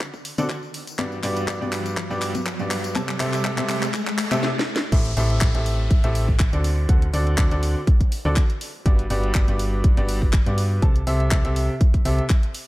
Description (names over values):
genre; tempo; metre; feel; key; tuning
piano house; 122 BPM; 4/4; swing 54% on 16ths; unclear; A4 = 440 Hz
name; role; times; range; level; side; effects
electronic kick drum; drums; 0.0-12.4 s; none; -18 LUFS; equal; high-pass filter on kick, high-pass filter on room
house drum kit; drums; 0.0-12.7 s; crash cymbal, handclaps, hi-hat, snare drum; -29 LUFS; left 1 dB; none
tambourine and congas; percussion; 0.0-4.4 s; none; -32 LUFS; left 4 dB; none
riser and downlifter; sound effects; 0.1-8.9 s; none; -32 LUFS; equal; none
bright grand piano; riff; 0.4-12.2 s; G2 to A5; -26 LUFS; equal; sidechain pumping, low-pass filter
solid FM bass; bass; 4.9-12.2 s; G1 to G2; -23 LUFS; equal; sidechain pumping
room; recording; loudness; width
light reverb; dark, warm production; -19 LUFS; side -17 dB against mid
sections
0.0-4.9 A section; 4.9-12.7 B section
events
build-up 0.0-4.9; drum fill 0.0-4.4, 4.4-4.9; riser 0.1-4.4; drop 4.9-12.7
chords
0.0 D7; 0.7 Gmaj7; 3.0 C6; 4.9 Am7; 6.6 D7; 8.6 Gmaj7; 10.8 C6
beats
0.00 0.50 | 0.99 1.48 1.97 2.46 | 2.96 3.45 3.94 4.43 | 4.92 5.41 5.91 6.40 | 6.89 7.38 7.87 8.37 | 8.86 9.35 9.84 10.33 | 10.82 11.32 11.81 12.30